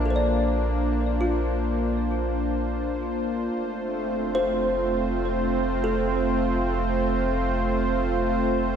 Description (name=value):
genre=ambient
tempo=50 BPM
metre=3/4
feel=straight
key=Bb lydian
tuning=A4 = 440 Hz
part: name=warm analog pad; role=sustained chords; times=0.0-8.8 s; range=A3 to A5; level=-24 LUFS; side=equal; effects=chorus
part: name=kalimba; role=arpeggios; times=0.0-8.8 s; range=F4 to F5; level=-30 LUFS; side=equal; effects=ping-pong delay
part: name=round analog bass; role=bass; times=0.0-8.8 s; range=F1 to Bb1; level=-29 LUFS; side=right 1 dB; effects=none
room=moderate lush hall reverb, RT60 3.0 s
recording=none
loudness=-22 LUFS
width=side -8 dB against mid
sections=0.0-8.8 A section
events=none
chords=0.0 Bbadd9; 3.6 F